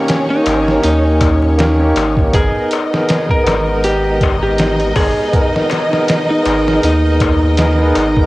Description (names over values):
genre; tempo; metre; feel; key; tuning
trip hop; 80 BPM; 4/4; swing 56% on 16ths; G# harmonic minor; A4 = 440 Hz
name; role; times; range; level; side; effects
barky tine electric piano; accompaniment; 0.0-8.3 s; G#3 to C#5; -18 LUFS; equal; overdrive, tremolo, cassette tape
warm symphonic violin section; sustained chords; 0.0-8.3 s; C#4 to D#5; -20 LUFS; equal; cassette tape
trip hop sampler-style drum kit; drums; 0.1-8.3 s; hi-hat, kick drum, snare drum; -18 LUFS; equal; cassette tape
darbuka; percussion; 0.1-8.3 s; none; -24 LUFS; left 6 dB; none
electric slide guitar; melody; 0.3-8.2 s; D#4 to A#4; -17 LUFS; equal; cassette tape, dub echo
round analog bass; bass; 0.5-8.3 s; G#1 to D#2; -16 LUFS; equal; none
backwards swelling texture; texture; 3.2-8.3 s; A#4; -30 LUFS; right 3 dB; none
room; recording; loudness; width
light reverb; home recording on cassette; -11 LUFS; side -19 dB against mid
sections
0.0-8.3 A section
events
none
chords
0.0 D#/G#; 2.3 G#madd9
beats
0.08 0.83 1.58 | 2.33 3.08 3.83 4.58 | 5.33 6.08 6.83 7.58